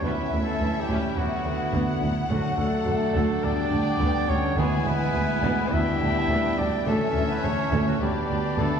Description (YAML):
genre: cinematic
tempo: 105 BPM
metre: 4/4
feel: straight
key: unclear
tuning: A4 = 440 Hz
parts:
  - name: warm studio violin section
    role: melody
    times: 0.0-8.8 s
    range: D5 to G#5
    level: -35 LUFS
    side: left 5 dB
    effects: none
  - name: clear clarinet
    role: second line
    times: 0.0-8.8 s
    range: A3 to D4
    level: -36 LUFS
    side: left 2 dB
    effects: none
  - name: mellow hollow silver concert flute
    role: second line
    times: 0.0-8.8 s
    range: E5 to B5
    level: -36 LUFS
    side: left 2 dB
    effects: none
  - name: warm symphonic violin section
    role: second line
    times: 0.0-8.8 s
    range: C#4 to E4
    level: -34 LUFS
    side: left 2 dB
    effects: none
  - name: rich symphonic viola section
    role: accompaniment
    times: 0.0-8.8 s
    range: C#3 to C#4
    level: -33 LUFS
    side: right 1 dB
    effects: none
  - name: mellow trombone section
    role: sustained chords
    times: 0.0-8.8 s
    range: D3 to C#4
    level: -32 LUFS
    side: right 3 dB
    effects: none
  - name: warm French horn section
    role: sustained chords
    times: 0.0-8.8 s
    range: F#3 to E4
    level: -32 LUFS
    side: left 3 dB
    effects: none
  - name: warm trumpet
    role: stabs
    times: 0.0-8.8 s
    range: F#4 to E5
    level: -29 LUFS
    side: right 2 dB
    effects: none
  - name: rich studio double bass section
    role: bass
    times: 0.0-8.7 s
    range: D2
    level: -29 LUFS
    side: right 1 dB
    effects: none
  - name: rich symphonic cello section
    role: bass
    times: 0.0-8.7 s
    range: D2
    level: -29 LUFS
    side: right 1 dB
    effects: none
room: wet scoring stage reverb, RT60 1.6 s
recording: heard from further back in the room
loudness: -22 LUFS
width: side -7 dB against mid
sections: 0.0-8.8 A section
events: none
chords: 0.0 A/D; 1.2 Bm/D; 2.3 D; 3.4 G/D; 4.6 E/D; 5.7 G/D; 6.9 A/D; 8.0 G/D